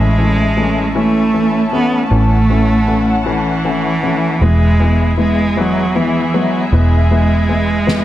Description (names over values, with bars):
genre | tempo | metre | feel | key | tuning
six-eight pop ballad | 52 BPM (dotted quarters) | 6/8 | straight | A major | A4 = 440 Hz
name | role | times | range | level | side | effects
warm cello | melody | 0.0-8.0 s | E3 to B3 | -16 LUFS | right 2 dB | tape echo
warm upright piano | accompaniment | 0.0-8.0 s | E3 to C#4 | -19 LUFS | left 5 dB | none
muted studio string section | sustained chords | 0.0-8.0 s | B3 to A5 | -21 LUFS | left 1 dB | none
vintage muted fingered electric bass | bass | 0.0-8.0 s | E1 to A1 | -15 LUFS | equal | none
snare drum | drums | 7.9-8.0 s | none | -17 LUFS | equal | none
room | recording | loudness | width
light reverb, small room ambience | dark, warm production | -11 LUFS | side -13 dB against mid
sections
0.0-8.0 A section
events
drum fill 7.9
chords
0.0 A; 4.4 E